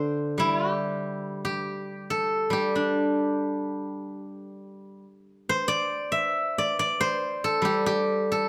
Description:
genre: chinese traditional, Chinese solo plucked strings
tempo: 70 BPM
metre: 4/4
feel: rubato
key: G zhi mode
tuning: A4 = 438 Hz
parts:
  - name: steel-string zither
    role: solo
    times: 0.0-8.5 s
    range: D3 to E5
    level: -27 LUFS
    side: equal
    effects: none
room: light reverb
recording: close, detailed microphones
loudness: -27 LUFS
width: mono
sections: 0.0-8.5 A section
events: none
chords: none

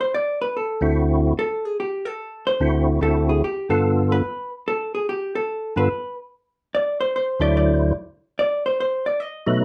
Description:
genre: jazz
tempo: 146 BPM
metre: 4/4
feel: swing 66% on 8ths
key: D mixolydian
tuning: A4 = 440 Hz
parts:
  - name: vintage hollow-body jazz guitar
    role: accompaniment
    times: 0.0-9.6 s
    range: G4 to D#5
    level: -25 LUFS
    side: equal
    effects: none
  - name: percussive tonewheel organ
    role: melody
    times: 0.8-9.6 s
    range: D2 to C5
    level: -20 LUFS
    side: equal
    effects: slow rotary speaker, chorus vibrato
room: wet studio reverb, RT60 0.5 s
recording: dark, warm production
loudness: -22 LUFS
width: mono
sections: 0.0-9.6 A section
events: hollow-body jazz guitar solo 0.0-9.6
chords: 0.1 D7; 1.8 N.C.; 2.6 D7; 3.4 G7; 6.7 D7; 8.4 N.C.

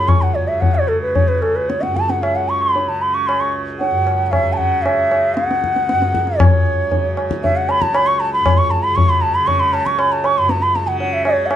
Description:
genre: indian classical, Hindustani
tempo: 116 BPM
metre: 4/4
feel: straight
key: C# raga malkauns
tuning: A4 = 443 Hz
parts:
  - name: bansuri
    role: melody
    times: 0.0-11.6 s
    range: A4 to C#6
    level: -16 LUFS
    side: equal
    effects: none
  - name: tanpura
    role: drone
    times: 0.0-11.6 s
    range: C#2 to C#3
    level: -24 LUFS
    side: right 1 dB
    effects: none
  - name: tabla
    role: percussion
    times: 0.1-11.6 s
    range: none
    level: -18 LUFS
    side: left 1 dB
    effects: none
room: moderate studio reverb, RT60 0.6 s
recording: nothing above 10.7 kHz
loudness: -14 LUFS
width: side -10 dB against mid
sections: 0.0-6.4 A section; 6.4-11.6 B section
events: speeding up 0.0-11.6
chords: none

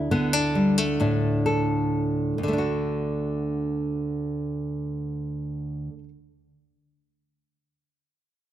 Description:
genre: folk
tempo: 64 BPM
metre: 4/4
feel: straight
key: D major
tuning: A4 = 440 Hz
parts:
  - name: nylon-string guitar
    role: accompaniment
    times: 0.0-6.1 s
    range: D2 to A4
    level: -24 LUFS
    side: equal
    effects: none
room: moderate scoring stage reverb, RT60 1.9 s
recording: close, detailed microphones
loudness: -23 LUFS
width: side -12 dB against mid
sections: 0.0-2.4 A section; 2.4-6.1 B section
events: slowing down 0.0-2.4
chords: 0.0 D5; 2.4 D

